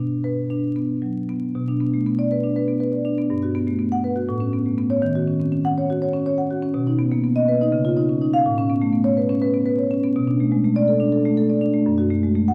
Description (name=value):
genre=classical, contemporary piece for solo marimba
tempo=244 BPM (eighths)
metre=7/8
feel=rubato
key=A major from 8.4 s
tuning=A4 = 440 Hz
part: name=marimba with soft mallets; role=solo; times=0.0-12.5 s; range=F#2 to F#5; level=-21 LUFS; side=equal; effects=none
room=wet recital hall reverb, RT60 1.8 s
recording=vinyl crackle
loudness=-21 LUFS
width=mono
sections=0.0-1.5 A section; 1.5-12.5 B section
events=none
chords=0.0 Bm; 3.3 Gmaj7; 4.3 Aadd9; 5.0 D#m7; 6.7 B; 7.7 C#add9; 8.4 Aadd9; 10.1 Bm7; 11.9 F#madd9